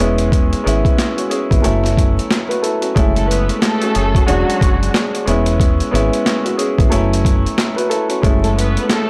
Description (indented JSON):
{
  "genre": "hip hop, boom-bap hip-hop",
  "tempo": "91 BPM",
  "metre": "4/4",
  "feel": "swing 59% on 16ths",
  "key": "F# minor",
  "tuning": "A4 = 439 Hz",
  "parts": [
    { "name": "warm upright piano", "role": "accompaniment", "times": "0.0-9.1 s", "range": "F#3 to B4", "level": "-20 LUFS", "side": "equal", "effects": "cassette tape, high-pass filter, low-pass filter" },
    { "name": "deep dub fingered electric bass", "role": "bass", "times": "0.0-8.8 s", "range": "E1 to G#1", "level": "-20 LUFS", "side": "equal", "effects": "tube saturation" },
    { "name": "boom bap sampler-style drum kit", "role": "drums", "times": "0.0-9.1 s", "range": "handclaps, hi-hat, kick drum, snare drum", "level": "-20 LUFS", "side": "equal", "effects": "overdrive" },
    { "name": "warm studio string section", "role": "stabs", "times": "3.1-9.1 s", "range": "F#3 to B4", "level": "-23 LUFS", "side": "equal", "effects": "high-pass filter, low-pass filter, tape echo" }
  ],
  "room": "light reverb",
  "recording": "dry, gritty hardware recording, transformer saturation, vinyl crackle",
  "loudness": "-16 LUFS",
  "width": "mono",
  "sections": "0.0-3.0 A section; 3.0-9.1 B section",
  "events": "none",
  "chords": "0.0 E69; 1.6 F#m7; 3.0 F#m9; 4.3 E13; 5.3 E69; 6.9 F#m7; 8.2 F#m9",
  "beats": "| 0.32 0.98 1.64 2.30 | 2.96 3.62 4.28 4.94 | 5.60 6.26 6.92 7.58 | 8.23 8.89"
}